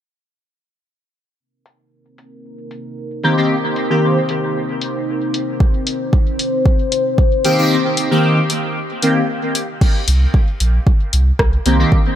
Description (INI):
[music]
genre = dub techno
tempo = 114 BPM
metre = 4/4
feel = swing 53% on 16ths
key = C minor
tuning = A4 = 440 Hz
[part]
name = deep dark ambient pad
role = sustained chords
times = 2.6-9.8 s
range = C4 to C5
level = -22 LUFS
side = left 2 dB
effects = chorus, built-in reverb, sidechain pumping
[part]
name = deep house drum kit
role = drums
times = 1.7-11.8 s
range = crash cymbal, hi-hat, rim click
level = -21 LUFS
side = left 2 dB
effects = overdrive, low-pass filter on hats, low-pass filter on cymbals, low-pass filter on snare, low-pass filter on room
[part]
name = resonant sweep polysynth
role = stabs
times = 3.2-4.2, 7.4-12.0 s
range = Eb3 to G4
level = -17 LUFS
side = equal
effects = chorus, phaser, sidechain pumping, dub echo
[part]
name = electronic kick drum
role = drums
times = 5.6-12.0 s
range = none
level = -14 LUFS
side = equal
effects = overdrive
[part]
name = soft dub sub bass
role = bass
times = 10.1-11.8 s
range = Bb1 to C2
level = -14 LUFS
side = equal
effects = sidechain pumping
[sound]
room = light reverb, digital ambience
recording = none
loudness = -14 LUFS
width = side -10 dB against mid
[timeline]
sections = 1.4-9.8 A section; 9.8-12.2 B section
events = kick drops out 7.7-9.8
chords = 1.4 Cm7